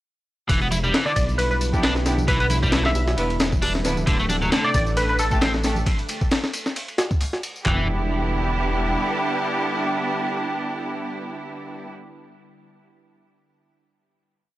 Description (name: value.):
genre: breakbeat, breaks.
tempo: 134 BPM.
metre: 4/4.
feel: swing 55% on 16ths.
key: E minor.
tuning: A4 = 440 Hz.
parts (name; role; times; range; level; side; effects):
lush unison pad; sustained chords; 0.5-11.9 s; D3 to G5; -31 LUFS; equal; chorus, vintage 12-bit sampler grit, sidechain pumping.
biting overdriven guitar; riff; 0.5-7.9 s; C3 to E4; -27 LUFS; equal; tape echo.
dark detuned saw bass; bass; 0.5-9.0 s; D1 to B1; -24 LUFS; equal; none.
breakbeat sampler-style drum kit; drums; 0.5-7.8 s; handclaps, hi-hat, kick drum, ride cymbal, snare drum, toms; -23 LUFS; equal; small room ambience.
tambourine; drums; 0.5-7.6 s; none; -36 LUFS; left 3 dB; small room ambience.
congas and bongos; percussion; 0.7-5.8 s; none; -32 LUFS; right 2 dB; none.
glassy wavetable pluck; melody; 1.1-5.4 s; A4 to E5; -26 LUFS; equal; chorus, AM radio sound, tape echo.
bright studio string section; stabs; 1.7-11.9 s; A3 to B4; -26 LUFS; right 2 dB; tape echo.
room: light reverb.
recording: dry, gritty hardware recording, cassette tape.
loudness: -20 LUFS.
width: side -16 dB against mid.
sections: 0.5-7.7 groove; 7.7-11.2 final chord.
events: none.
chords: 0.5 Em7; 4.1 Dsus4; 7.7 Em7.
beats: | 0.49 0.94 1.39 1.83 | 2.28 2.73 3.18 3.63 | 4.07 4.52 4.97 5.42 | 5.87 6.31 6.76 7.21 | 7.66 8.10 8.55 9.00 | 9.45 9.89 10.34 10.79.